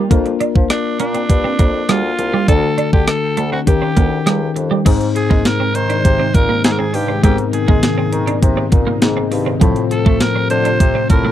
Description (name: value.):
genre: 1980s-style pop.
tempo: 101 BPM.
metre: 4/4.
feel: straight.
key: unclear.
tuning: A4 = 444 Hz.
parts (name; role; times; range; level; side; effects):
tine electric piano; accompaniment; 0.0-11.3 s; Ab2 to Eb5; -19 LUFS; left 7 dB; none.
twelve-string electric guitar; riff; 0.0-11.3 s; F3 to D4; -21 LUFS; right 7 dB; ensemble chorus.
mellow bassoon; bass; 0.0-11.3 s; C2 to A3; -22 LUFS; equal; none.
clean 12-bit digital drum machine; drums; 0.1-11.2 s; crash cymbal, hi-hat, kick drum, rim click, snare drum; -14 LUFS; equal; overdrive.
raspy alto saxophone; melody; 0.7-11.3 s; D4 to C5; -20 LUFS; right 1 dB; none.
string machine, cellos; sustained chords; 4.9-11.3 s; C3 to F4; -23 LUFS; right 1 dB; ensemble chorus.
room: light reverb.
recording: dry, close 1970s-style studio recording.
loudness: -13 LUFS.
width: side -11 dB against mid.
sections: 0.0-4.9 A section; 4.9-11.3 B section.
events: none.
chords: 0.1 Bb/F; 2.5 D; 3.7 Eb7; 4.9 Ab; 9.6 F.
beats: | 0.11 0.70 1.30 1.89 | 2.48 3.08 3.67 4.27 | 4.86 5.46 6.05 6.64 | 7.24 7.83 8.43 9.02 | 9.61 10.21 10.80.